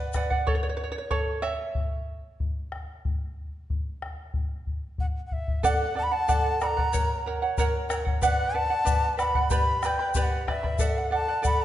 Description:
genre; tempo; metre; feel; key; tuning
andean folk, Andean ensemble; 93 BPM; 2/4; straight; unclear; A4 = 441 Hz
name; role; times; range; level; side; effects
charango; accompaniment; 0.0-2.7, 5.6-11.6 s; G4 to B5; -27 LUFS; right 3 dB; none
bombo; percussion; 0.1-11.6 s; none; -28 LUFS; left 2 dB; none
egg shaker; percussion; 0.1-0.3, 5.6-11.6 s; none; -41 LUFS; left 9 dB; none
bright reedy large quena; melody; 5.0-11.6 s; E5 to B5; -28 LUFS; left 1 dB; none
room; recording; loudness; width
wet recital hall reverb, RT60 1.5 s; nothing above 10.7 kHz; -24 LUFS; side -12 dB against mid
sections
0.5-5.6 A section; 5.6-11.6 B section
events
charango solo 0.5-5.6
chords
0.5 A (rootless); 3.0 N.C.; 5.6 D; 6.9 F#; 8.2 Bm; 9.5 G; 10.8 D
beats
| 0.46 1.11 | 1.75 2.40 | 3.05 3.70 | 4.34 4.99 | 5.64 6.29 | 6.93 7.58 | 8.22 8.87 | 9.51 10.16 | 10.80 11.45

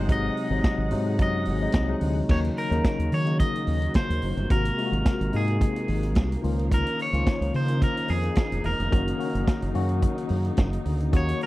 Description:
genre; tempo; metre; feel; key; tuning
disco; 109 BPM; 4/4; straight; Eb dorian; A4 = 440 Hz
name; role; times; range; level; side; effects
electric guitar at the edge of break-up; melody; 0.0-11.5 s; Ab4 to Eb5; -31 LUFS; equal; none
tine electric piano; accompaniment; 0.0-11.5 s; C3 to Gb4; -29 LUFS; left 4 dB; medium stereo tremolo
dark studio string section; sustained chords; 0.0-11.5 s; C3 to Gb5; -36 LUFS; right 2 dB; none
fingered electric bass; bass; 0.0-11.3 s; Fb1 to Eb3; -26 LUFS; equal; none
vintage drum kit; drums; 0.1-11.5 s; crash cymbal, hi-hat, kick drum, snare drum; -23 LUFS; equal; none
room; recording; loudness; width
studio ambience; dry, close 1970s-style studio recording; -22 LUFS; side -17 dB against mid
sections
0.0-2.3 A section; 2.3-11.5 B section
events
none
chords
0.0 Ab7; 2.3 Ebm7; 4.5 Ab9; 6.4 Db69; 8.9 Gb6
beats
| 0.09 0.65 1.20 1.75 | 2.30 2.85 3.40 3.95 | 4.50 5.06 5.61 6.16 | 6.71 7.26 7.82 8.37 | 8.92 9.47 10.02 10.58 | 11.13

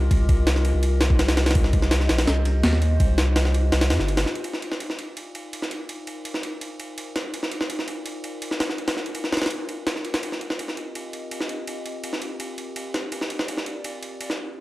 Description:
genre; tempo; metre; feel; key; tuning
drum and bass, jungle; 166 BPM; 4/4; straight; C minor; A4 = 442 Hz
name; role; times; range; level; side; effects
warbly tape-like pad; sustained chords; 0.0-14.6 s; C4 to Eb5; -33 LUFS; left 1 dB; chorus, built-in reverb
saturated sub bass; bass; 0.0-4.3 s; G1 to F2; -21 LUFS; equal; none
jungle sampler-style drum kit; drums; 0.1-14.4 s; kick drum, ride cymbal, snare drum; -24 LUFS; equal; high-pass filter on kick, high-pass filter on cymbals, high-pass filter on snare, high-pass filter on room
room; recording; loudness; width
digital ambience; dry, gritty hardware recording, vinyl crackle; -22 LUFS; side -18 dB against mid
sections
0.0-4.4 A section; 4.4-14.6 B section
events
drop 0.0-4.4; kick drops out 3.7-4.4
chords
0.0 Ebadd9/C; 4.4 Cm11; 10.2 Ebadd9/C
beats
| 0.11 0.47 0.83 1.19 | 1.55 1.92 2.28 2.64 | 3.00 3.36 3.72 4.08 | 4.45 4.81 5.17 5.53 | 5.89 6.25 6.62 6.98 | 7.34 7.70 8.06 8.42 | 8.78 9.15 9.51 9.87 | 10.23 10.59 10.95 11.31 | 11.68 12.04 12.40 12.76 | 13.12 13.48 13.84 14.21 | 14.57

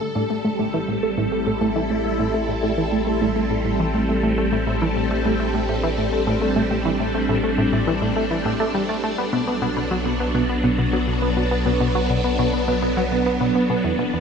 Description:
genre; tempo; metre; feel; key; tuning
ambient, sequencer-driven space music; 103 BPM; 4/4; straight; A dorian; A4 = 440 Hz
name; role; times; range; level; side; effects
phased string machine; sustained chords; 0.0-14.2 s; E3 to A4; -22 LUFS; equal; ensemble chorus, phaser
tight sequenced synth; riff; 0.0-14.2 s; E2 to B3; -22 LUFS; equal; chorus, phaser, analog delay
round analog bass; bass; 0.0-14.2 s; E1 to B1; -28 LUFS; equal; none
room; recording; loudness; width
wet huge ambient reverb, RT60 7.4 s; none; -19 LUFS; side -6 dB against mid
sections
0.0-14.2 A section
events
none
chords
0.0 Am7; 9.2 Bm7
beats
0.45 1.03 1.61 | 2.19 2.78 3.36 3.94 | 4.52 5.11 5.69 6.27 | 6.85 7.44 8.02 8.60 | 9.19 9.77 10.35 10.93 | 11.52 12.10 12.68 13.26 | 13.85

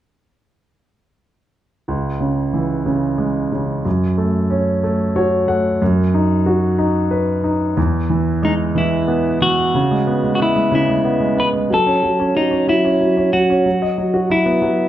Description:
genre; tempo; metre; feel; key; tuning
pop; 61 BPM (dotted quarters); 6/8; straight; unclear; A4 = 439 Hz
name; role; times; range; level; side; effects
bright grand piano; accompaniment; 1.9-14.9 s; C#2 to F#5; -16 LUFS; right 1 dB; none
clean electric guitar; melody; 8.4-14.9 s; D#4 to B4; -17 LUFS; left 2 dB; none
room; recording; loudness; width
wet large studio reverb, RT60 0.9 s; band playing live in one room; -15 LUFS; side -12 dB against mid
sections
1.9-9.7 A section; 9.7-14.9 B section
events
grand piano fill 4.8-5.8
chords
1.9 C#m; 3.9 F#m; 5.8 B/F#; 7.8 E; 9.7 C#m7; 11.7 F#m; 13.7 B/F#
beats
| 1.89 2.87 | 3.85 4.83 | 5.81 6.79 | 7.77 8.76 | 9.74 10.72 | 11.71 12.68 | 13.65 14.63

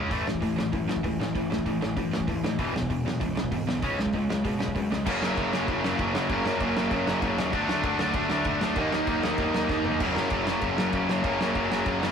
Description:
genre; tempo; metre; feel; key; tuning
punk rock; 194 BPM; 4/4; straight; F# major from 5.1 s; A4 = 440 Hz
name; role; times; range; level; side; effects
distorted electric guitar; riff; 0.0-12.1 s; E2 to D#4; -29 LUFS; left 3 dB; overdrive
tight distorted guitar; riff; 0.0-12.1 s; E2 to D#4; -31 LUFS; right 4 dB; distortion
fuzz picked electric bass; bass; 0.0-12.1 s; E1 to B2; -34 LUFS; equal; overdrive
loose indie drum kit; drums; 0.1-12.1 s; crash cymbal, hi-hat, kick drum, snare drum, toms; -31 LUFS; equal; none
distorted electric guitar; riff; 5.1-12.1 s; F#2 to D#4; -29 LUFS; right 1 dB; overdrive
room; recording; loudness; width
moderate small room ambience, RT60 0.5 s; rough rehearsal-room recording, warm saturation; -24 LUFS; side -7 dB against mid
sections
0.0-5.1 A section; 5.1-12.1 B section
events
drum fill 9.7-10.0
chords
0.1 A5; 2.6 E5; 3.8 C#5; 5.1 F#; 7.5 D; 8.8 D#m; 10.0 F#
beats
| 0.11 0.42 0.73 1.04 | 1.35 1.66 1.97 2.28 | 2.59 2.90 3.21 3.52 | 3.83 4.14 4.45 4.76 | 5.07 5.38 5.68 5.99 | 6.30 6.61 6.92 7.23 | 7.54 7.84 8.15 8.46 | 8.77 9.08 9.39 9.70 | 10.01 10.31 10.62 10.93 | 11.24 11.55 11.86

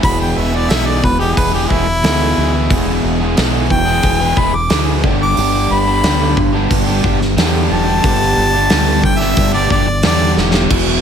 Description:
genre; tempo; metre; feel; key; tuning
classic rock; 90 BPM; 4/4; straight; unclear; A4 = 440 Hz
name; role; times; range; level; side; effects
warm harmonica; melody; 0.0-10.4 s; E4 to D6; -18 LUFS; equal; none
crunchy overdriven guitar; riff; 0.0-11.0 s; E2 to G#4; -17 LUFS; equal; none
growling fingered electric bass; bass; 0.0-11.0 s; E1 to E2; -18 LUFS; equal; overdrive
big rock drum kit; drums; 0.0-10.9 s; crash cymbal, hi-hat, kick drum, snare drum; -17 LUFS; equal; none
room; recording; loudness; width
light reverb, studio ambience; none; -12 LUFS; side -8 dB against mid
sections
0.0-10.7 A section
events
harmonica solo 0.0-10.7; drum fill 10.4-10.7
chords
0.0 E; 5.0 G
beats
| 0.03 0.70 1.37 2.04 | 2.71 3.37 4.04 4.71 | 5.38 6.04 6.71 7.38 | 8.04 8.71 9.38 10.04 | 10.71

